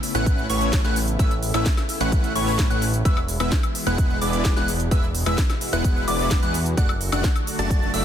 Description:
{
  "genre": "EDM, festival progressive house",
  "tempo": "129 BPM",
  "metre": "4/4",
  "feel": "straight",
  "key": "A major",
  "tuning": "A4 = 442 Hz",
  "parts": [
    { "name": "lush unison pad", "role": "sustained chords", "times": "0.0-8.0 s", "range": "B2 to F#4", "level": "-32 LUFS", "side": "left 1 dB", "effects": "chorus, phaser, sidechain pumping" },
    { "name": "house drum kit", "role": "drums", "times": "0.0-8.0 s", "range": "hi-hat, shaker, snare drum, woodblock", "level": "-28 LUFS", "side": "equal", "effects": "none" },
    { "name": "plucky unison lead", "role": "arpeggios", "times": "0.1-8.0 s", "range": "C#6 to A6", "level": "-29 LUFS", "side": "equal", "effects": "sidechain pumping, ping-pong delay" },
    { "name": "dense compressed supersaw", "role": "riff", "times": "0.1-8.0 s", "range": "G#3 to A5", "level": "-26 LUFS", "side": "equal", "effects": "sidechain pumping, ping-pong delay" },
    { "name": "fat analog bass", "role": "bass", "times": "0.1-8.0 s", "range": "E1 to E2", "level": "-26 LUFS", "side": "equal", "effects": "sidechain pumping" },
    { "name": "electronic kick drum", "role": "drums", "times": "0.3-7.8 s", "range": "none", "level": "-21 LUFS", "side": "equal", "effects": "none" }
  ],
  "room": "little or no reverb",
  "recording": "dense, heavily limited modern master",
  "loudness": "-19 LUFS",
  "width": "side -10 dB against mid",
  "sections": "0.0-8.0 A section",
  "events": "none",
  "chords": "0.0 Aadd9; 3.1 E; 6.8 D/F#"
}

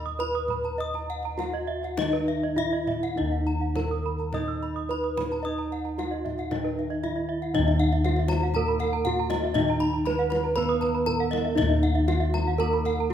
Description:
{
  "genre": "Balinese gamelan",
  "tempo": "101-119 BPM",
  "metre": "4/4",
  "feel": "straight",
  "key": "Eb pelog",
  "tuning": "A4 = 439 Hz",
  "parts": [
    { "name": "gamelan-type bronze metallophone", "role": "melody", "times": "0.0-13.1 s", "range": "Eb4 to Eb5", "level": "-28 LUFS", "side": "right 1 dB", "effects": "none" },
    { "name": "gamelan-type bronze metallophone", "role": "arpeggios", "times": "0.0-13.0 s", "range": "Eb5 to Eb6", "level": "-32 LUFS", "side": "left 4 dB", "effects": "none" },
    { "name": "gamelan-type bossed gongs", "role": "bass", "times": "0.0-13.1 s", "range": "Eb2 to Eb5", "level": "-29 LUFS", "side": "left 1 dB", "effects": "none" },
    { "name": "gamelan-type bronze metallophone", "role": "arpeggios", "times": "0.1-13.1 s", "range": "Cb5-20c to Fb6+20c", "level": "-35 LUFS", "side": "right 7 dB", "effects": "none" },
    { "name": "kendang", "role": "percussion", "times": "0.3-13.1 s", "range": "none", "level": "-36 LUFS", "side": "left 2 dB", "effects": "none" },
    { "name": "gamelan-type bronze metallophone", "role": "accompaniment", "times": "3.2-13.1 s", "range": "Eb3 to Eb4", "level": "-33 LUFS", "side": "right 3 dB", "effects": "none" }
  ],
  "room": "moderate recital hall reverb, RT60 1.7 s",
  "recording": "minimal, uncompressed stereo recording",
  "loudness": "-24 LUFS",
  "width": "side -9 dB against mid",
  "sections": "0.0-7.5 A section; 7.5-13.1 B section",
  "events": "none",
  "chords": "none"
}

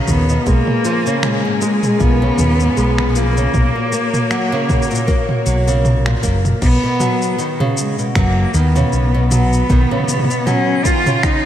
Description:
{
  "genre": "folktronica",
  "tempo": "78 BPM",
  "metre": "4/4",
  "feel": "swing 56% on 16ths",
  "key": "B lydian",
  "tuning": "A4 = 439 Hz",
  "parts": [
    { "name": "rich string quartet", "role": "sustained chords", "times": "0.0-6.6 s", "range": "C#4 to D#5", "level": "-27 LUFS", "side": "left 2 dB", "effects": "none" },
    { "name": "nylon-string guitar", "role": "arpeggios", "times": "0.0-11.4 s", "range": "G#2 to A#3", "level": "-20 LUFS", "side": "equal", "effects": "ping-pong delay" },
    { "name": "twinkling granular texture", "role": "texture", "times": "0.0-6.6 s", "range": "A#4 to A#5", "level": "-33 LUFS", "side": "right 1 dB", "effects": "none" },
    { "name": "rich cello", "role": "melody", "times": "0.1-11.5 s", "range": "G#3 to E#4", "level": "-19 LUFS", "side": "left 1 dB", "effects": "ping-pong delay" },
    { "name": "fingered electric bass", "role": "bass", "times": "0.1-9.8 s", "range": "F#1 to D#2", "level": "-16 LUFS", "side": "equal", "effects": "none" },
    { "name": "electronic kick drum", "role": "drums", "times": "0.1-11.4 s", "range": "none", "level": "-17 LUFS", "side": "equal", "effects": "none" },
    { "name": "organic electronic drum kit", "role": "drums", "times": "0.1-11.4 s", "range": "crash cymbal, finger snaps, shaker, toms", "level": "-22 LUFS", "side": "right 1 dB", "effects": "none" }
  ],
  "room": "wet lush hall reverb, RT60 2.8 s",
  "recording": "dreamy mix soaked in reverb",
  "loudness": "-13 LUFS",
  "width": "side -11 dB against mid",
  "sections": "0.0-6.6 A section; 6.6-11.5 B section",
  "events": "none",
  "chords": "0.5 C#/B; 3.5 F#/B; 6.6 Badd9"
}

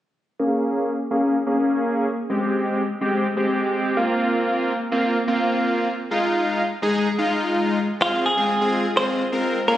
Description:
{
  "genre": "pop",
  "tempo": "126 BPM",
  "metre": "4/4",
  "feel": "straight",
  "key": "F minor",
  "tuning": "A4 = 439 Hz",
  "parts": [
    { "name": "big bright polysynth", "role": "accompaniment", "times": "0.4-9.8 s", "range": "Ab3 to Bb4", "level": "-20 LUFS", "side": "equal", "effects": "chorus, low-pass filter" },
    { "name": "direct-recorded clean electric guitar", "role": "melody", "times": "8.0-9.7 s", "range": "F4 to C5", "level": "-20 LUFS", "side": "right 1 dB", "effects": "ping-pong delay" }
  ],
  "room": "moderate lush hall reverb, RT60 2.8 s",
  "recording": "recorded on a phone in the room, studio reverb, compression",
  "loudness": "-19 LUFS",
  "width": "side -12 dB against mid",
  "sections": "0.4-8.0 A section; 8.0-9.8 B section",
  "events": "filter sweep on analog polysynth 0.4-8.0",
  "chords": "0.4 Bbm7; 2.3 Abmaj7; 4.0 C7sus4; 6.1 Fm7; 8.0 Fm"
}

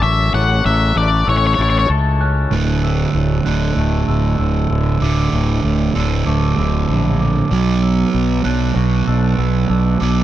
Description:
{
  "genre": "rock",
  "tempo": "96 BPM",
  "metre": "4/4",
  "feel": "straight",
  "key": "D major",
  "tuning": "A4 = 440 Hz",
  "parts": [
    { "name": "octave-fuzz lead guitar", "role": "melody", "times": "0.0-1.9 s", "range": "C#5 to F#5", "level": "-19 LUFS", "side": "left 5 dB", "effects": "distortion, slapback echo" },
    { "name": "glockenspiel with rubber mallets", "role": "arpeggios", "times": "0.0-10.2 s", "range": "C#6 to A6", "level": "-27 LUFS", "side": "right 2 dB", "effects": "slapback echo" },
    { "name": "twangy electric guitar", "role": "arpeggios", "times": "0.0-10.2 s", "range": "D2 to A4", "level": "-26 LUFS", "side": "left 6 dB", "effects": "slapback echo" },
    { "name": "fuzz fingered electric bass", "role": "bass", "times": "0.0-10.2 s", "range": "D1 to C#2", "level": "-17 LUFS", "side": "left 1 dB", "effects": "overdrive" },
    { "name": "sludgy distorted guitar", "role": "riff", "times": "2.5-10.2 s", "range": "D2 to B3", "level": "-18 LUFS", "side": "right 6 dB", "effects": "overdrive" }
  ],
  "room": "digital ambience",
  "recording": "dark, warm production",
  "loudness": "-14 LUFS",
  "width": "side -12 dB against mid",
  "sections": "0.0-2.5 A section; 2.5-10.2 B section",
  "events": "none",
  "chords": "0.0 F#m/A; 1.3 A; 2.5 Dsus2; 7.5 Bm"
}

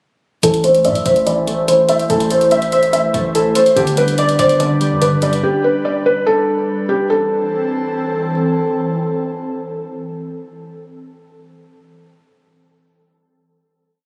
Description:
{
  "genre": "hip hop, trap",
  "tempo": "144 BPM",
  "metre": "4/4",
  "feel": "half-time",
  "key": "A minor",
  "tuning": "A4 = 440 Hz",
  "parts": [
    { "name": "felt-muted upright piano", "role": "melody", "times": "0.4-8.3 s", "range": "G4 to E5", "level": "-17 LUFS", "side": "equal", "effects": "low-pass filter, digital delay" },
    { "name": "glassy digital keys", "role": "accompaniment", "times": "0.4-6.3 s", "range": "D3 to E5", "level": "-21 LUFS", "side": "equal", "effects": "chorus, phaser, low-pass filter" },
    { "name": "airy breathy pad", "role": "sustained chords", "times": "0.4-10.8 s", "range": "E3 to C5", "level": "-24 LUFS", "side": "equal", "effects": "chorus, low-pass filter" },
    { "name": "hard-hitting 808-style bass", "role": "bass", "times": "0.4-5.4 s", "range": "G1 to A2", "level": "-28 LUFS", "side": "equal", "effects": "none" },
    { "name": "electronic hi-hat", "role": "drums", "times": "0.4-5.4 s", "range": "none", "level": "-28 LUFS", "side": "equal", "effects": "none" }
  ],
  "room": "light reverb",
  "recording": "recorded on a phone in the room, studio reverb",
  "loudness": "-16 LUFS",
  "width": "mono",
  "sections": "0.4-7.1 breakdown; 7.1-10.4 final chord",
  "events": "filter sweep 0.4-7.1",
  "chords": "0.4 Am; 3.8 G; 7.1 Am"
}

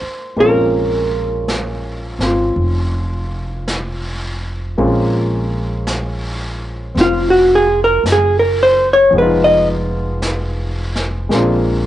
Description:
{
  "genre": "jazz ballad",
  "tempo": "55 BPM",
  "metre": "4/4",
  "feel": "swing 67% on 8ths",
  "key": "Bb minor",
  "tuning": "A4 = 436 Hz",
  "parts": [
    { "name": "vintage hollow-body jazz guitar", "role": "melody", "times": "0.0-9.7 s", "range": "F4 to Eb5", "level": "-12 LUFS", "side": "equal", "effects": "cassette tape, plate reverb" },
    { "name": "warm baby grand piano", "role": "accompaniment", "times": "0.0-11.9 s", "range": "F3 to F4", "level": "-20 LUFS", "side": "left 1 dB", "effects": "cassette tape" },
    { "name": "upright bass", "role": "bass", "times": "0.0-11.9 s", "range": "F1 to Bb1", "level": "-20 LUFS", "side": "equal", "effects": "transformer saturation" },
    { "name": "jazz brush drum kit", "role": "drums", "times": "0.4-11.9 s", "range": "brushed snare drum, hi-hat, snare drum", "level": "-26 LUFS", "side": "equal", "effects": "cassette tape" }
  ],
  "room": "light reverb",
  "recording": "home recording on cassette, nothing above 10.8 kHz",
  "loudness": "-13 LUFS",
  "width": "side -13 dB against mid",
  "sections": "0.0-4.8 A section; 4.8-11.9 B section",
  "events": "hollow-body jazz guitar solo 4.8-11.9",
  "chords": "0.0 Bbm7; 9.1 Fm7b5; 11.3 Bb7"
}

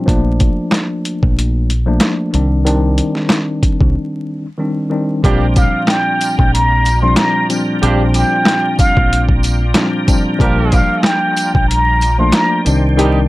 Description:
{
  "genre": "hip hop, boom-bap hip-hop",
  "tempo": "93 BPM",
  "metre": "4/4",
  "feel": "swing 55% on 16ths",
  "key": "Bb major",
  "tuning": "A4 = 444 Hz",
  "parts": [
    { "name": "mellow tine electric piano", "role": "accompaniment", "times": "0.0-13.3 s", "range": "Bb2 to D4", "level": "-17 LUFS", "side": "left 1 dB", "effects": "medium stereo tremolo, high-pass filter, low-pass filter" },
    { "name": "deep dub fingered electric bass", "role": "bass", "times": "0.1-13.3 s", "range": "Bb1 to C2", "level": "-15 LUFS", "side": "equal", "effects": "none" },
    { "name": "boom bap sampler-style drum kit", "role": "drums", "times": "0.1-13.2 s", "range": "hi-hat, kick drum, snare drum", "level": "-14 LUFS", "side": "equal", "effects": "none" },
    { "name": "tonewheel organ", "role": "sustained chords", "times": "5.2-13.3 s", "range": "Eb3 to Bb5", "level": "-25 LUFS", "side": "equal", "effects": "overdrive, chorus vibrato, slow rotary speaker, high-pass filter, low-pass filter" },
    { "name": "warm horn section", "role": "stabs", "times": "5.2-13.2 s", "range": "G3 to Bb4", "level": "-21 LUFS", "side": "right 4 dB", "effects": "high-pass filter, low-pass filter, digital delay" },
    { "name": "trumpet with plunger mute", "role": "melody", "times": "5.6-12.6 s", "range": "F5 to C6", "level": "-16 LUFS", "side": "equal", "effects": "high-pass filter, low-pass filter" },
    { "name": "tambourine", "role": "percussion", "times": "5.6-12.8 s", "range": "none", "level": "-28 LUFS", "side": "right 4 dB", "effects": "none" }
  ],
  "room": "little or no reverb",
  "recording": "vinyl crackle",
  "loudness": "-12 LUFS",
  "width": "side -18 dB against mid",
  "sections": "0.0-5.2 A section; 5.2-13.3 B section",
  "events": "break 3.9-5.2",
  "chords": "0.1 Bbmaj7; 2.3 Cmadd9; 5.2 Bb6; 10.4 Gm7/Bb; 12.7 Cmadd9"
}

